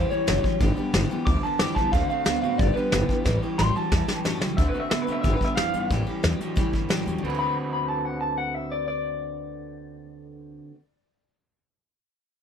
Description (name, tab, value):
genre	rockabilly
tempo	181 BPM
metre	4/4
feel	straight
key	D mixolydian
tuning	A4 = 440 Hz
part	electric guitar through a small old amp	melody	0.0-11.3 s	B4 to D6	-27 LUFS	left 1 dB	digital delay
part	picked steel-string acoustic guitar	accompaniment	0.0-10.8 s	G2 to B4	-32 LUFS	left 6 dB	none
part	electric guitar through a small old amp	riff	0.0-10.8 s	G2 to B4	-31 LUFS	right 5 dB	none
part	upright bass	bass	0.0-10.6 s	F#1 to C3	-29 LUFS	equal	none
part	vintage brush drum kit	drums	0.3-7.1 s	hi-hat, kick drum, snare drum	-26 LUFS	equal	none
room	little or no reverb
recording	none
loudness	-22 LUFS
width	side -8 dB against mid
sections	0.0-4.6 A section; 4.6-7.2 B section; 7.2-9.9 C section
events	drum fill 3.3-4.6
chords	0.0 A7; 0.6 G7; 1.9 D7; 2.6 G7; 3.3 A7; 4.6 D7; 5.2 G7; 5.9 A7; 7.2 D6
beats	0.28 | 0.61 0.94 1.27 1.60 | 1.93 2.26 2.59 2.92 | 3.25 3.58 3.92 4.25 | 4.58 4.91 5.24 5.57 | 5.90 6.23 6.57 6.90 | 7.23 7.56 7.89 8.22 | 8.55 8.88 9.21 9.54